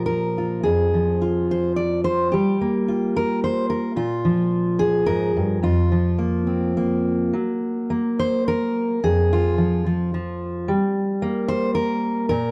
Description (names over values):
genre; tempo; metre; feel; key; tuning
folk, solo fingerstyle acoustic guitar; 108 BPM; 3/4; rubato; unclear; A4 = 441 Hz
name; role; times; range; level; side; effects
fingerpicked steel-string acoustic guitar; solo; 0.0-12.5 s; F2 to D5; -22 LUFS; equal; none
room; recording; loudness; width
light reverb; dark, warm production; -22 LUFS; mono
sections
0.0-7.3 A section; 7.3-12.5 B section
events
none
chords
0.0 Bb5; 0.7 N.C.; 2.3 Gm7; 4.0 Bb5; 5.6 F5; 7.3 Gb; 9.0 N.C.; 10.7 Gm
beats
0.09 | 0.66 1.22 1.78 | 2.34 2.89 3.44 | 3.99 4.54 5.08 | 5.63 6.19 6.76 | 7.33 7.90 8.46 | 9.02 9.58 10.13 | 10.68 11.23 11.77 | 12.32